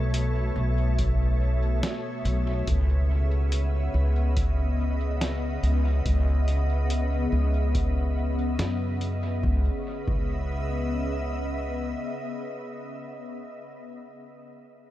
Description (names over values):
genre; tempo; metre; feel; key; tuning
ambient dub; 71 BPM; 4/4; straight; C# minor; A4 = 440 Hz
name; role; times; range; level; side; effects
soft additive organ-like pad; sustained chords; 0.0-13.6 s; B2 to E5; -31 LUFS; left 1 dB; ensemble chorus, built-in reverb
upright bass; bass; 0.0-11.9 s; B1 to F#2; -24 LUFS; equal; tube saturation
lo-fi sampler-style drum kit; drums; 0.1-9.2 s; hi-hat, snare drum; -35 LUFS; equal; dub echo
electronic kick drum; drums; 1.0-10.3 s; none; -30 LUFS; equal; none
room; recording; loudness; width
light reverb; none; -24 LUFS; side -14 dB against mid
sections
0.0-9.4 A section; 9.4-12.8 B section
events
none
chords
0.0 B9sus4; 2.7 C#m9